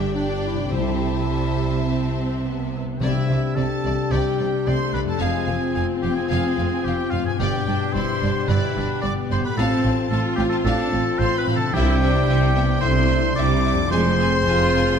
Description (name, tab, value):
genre	cinematic, heroic adventure film score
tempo	110 BPM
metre	4/4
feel	straight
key	C major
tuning	A4 = 440 Hz
part	rich symphonic violin section	melody	0.0-14.8 s	C5 to Ab5	-34 LUFS	left 3 dB	none
part	dark clarinet	second line	0.0-2.5 s	D4 to G4	-29 LUFS	left 2 dB	none
part	rich symphonic violin section	second line	0.0-15.0 s	D5 to D6	-30 LUFS	left 1 dB	none
part	clear symphonic viola section	accompaniment	0.0-15.0 s	G3 to G4	-28 LUFS	right 1 dB	none
part	concert harp	arpeggios	0.0-15.0 s	F2 to D5	-28 LUFS	left 8 dB	none
part	clear symphonic double bass section	bass	0.0-14.9 s	F1 to C2	-26 LUFS	right 3 dB	none
part	rich symphonic cello section	bass	0.0-14.9 s	F2 to C3	-26 LUFS	right 4 dB	none
part	timpani	percussion	0.7-3.8, 11.7-12.5 s	C3	-28 LUFS	left 2 dB	none
part	warm oboe	second line	3.0-15.0 s	E4 to D5	-26 LUFS	equal	none
part	mellow French horn section	sustained chords	3.0-15.0 s	B2 to Ab4	-26 LUFS	left 5 dB	none
room	moderate scoring stage reverb, RT60 2.0 s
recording	none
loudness	-19 LUFS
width	side -7 dB against mid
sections	0.0-3.0 A section; 3.0-15.0 A section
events	none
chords	0.0 G5; 0.7 C6; 3.0 Cadd9; 5.2 Fm; 7.4 G; 9.6 F/A; 11.7 Cadd9; 13.9 Fm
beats	0.15 | 0.73 1.30 1.88 2.45 | 3.02 3.57 4.12 4.67 | 5.22 5.77 6.32 6.86 | 7.41 7.95 8.50 9.04 | 9.58 10.12 10.66 11.20 | 11.75 12.29 12.83 13.37 | 13.91 14.46